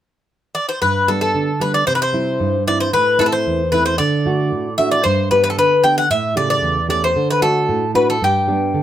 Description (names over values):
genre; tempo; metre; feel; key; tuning
greek folk, Greek bouzouki band; 114 BPM; 2/4; straight; G major; A4 = 439 Hz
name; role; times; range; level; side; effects
Greek bouzouki; melody; 0.5-8.8 s; G4 to G5; -16 LUFS; left 2 dB; none
nylon-string guitar; accompaniment; 0.8-8.8 s; E2 to G4; -19 LUFS; right 3 dB; none
room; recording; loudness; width
moderate studio reverb, RT60 0.6 s; none; -14 LUFS; side -11 dB against mid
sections
0.8-8.8 A section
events
none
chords
0.0 N.C.; 0.8 G; 1.9 C; 2.9 Am; 4.0 D; 5.0 G; 6.1 A7; 7.1 D; 8.2 G